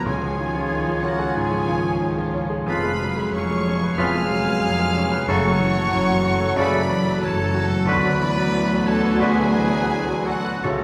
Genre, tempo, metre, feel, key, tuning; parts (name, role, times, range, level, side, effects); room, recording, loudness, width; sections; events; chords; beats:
classical; 92 BPM; 4/4; rubato; A4 = 440 Hz
clear baby grand piano; melody; 0.0-10.8 s; C#2 to B4; -26 LUFS; equal
rich studio violin section; melody; 0.0-10.8 s; C#5 to E#6; -33 LUFS; equal
silver concert flute; second line; 0.0-10.8 s; F#4 to G#5; -32 LUFS; equal
warm studio violin section; second line; 0.0-10.8 s; C#4 to A4; -38 LUFS; equal
rich studio viola section; accompaniment; 0.0-10.8 s; E#3 to D#4; -34 LUFS; equal
mellow French horn section; sustained chords; 0.0-10.8 s; A3 to F#4; -35 LUFS; equal
warm trumpet section; stabs; 0.0-10.8 s; C#4 to E#5; -31 LUFS; equal
rich studio double bass section; bass; 0.0-10.8 s; E#1 to D2; -30 LUFS; equal
warm studio cello section; bass; 0.0-10.8 s; C#2 to F#2; -30 LUFS; equal
clear clarinet; second line; 0.1-10.8 s; E#4 to F#4; -36 LUFS; equal
clear oboe; second line; 0.1-10.8 s; A4 to C#5; -33 LUFS; equal
clear bassoon; accompaniment; 0.1-10.8 s; C#3 to D3; -33 LUFS; equal
timpani; percussion; 0.1-1.0, 5.3-6.2 s; F#2 to C#3; -34 LUFS; equal
wet recital hall reverb, RT60 1.6 s; recorded in a church or concert hall; -21 LUFS; mono
0.0-10.8 A section
0.1 C#; 2.7 C#7/E#; 5.3 F#m; 7.9 Bm/D
| 0.07 0.72 1.36 2.03 | 2.69 3.35 3.99 4.64 | 5.29 5.93 6.58 7.24 | 7.89 8.55 9.21 9.90 | 10.65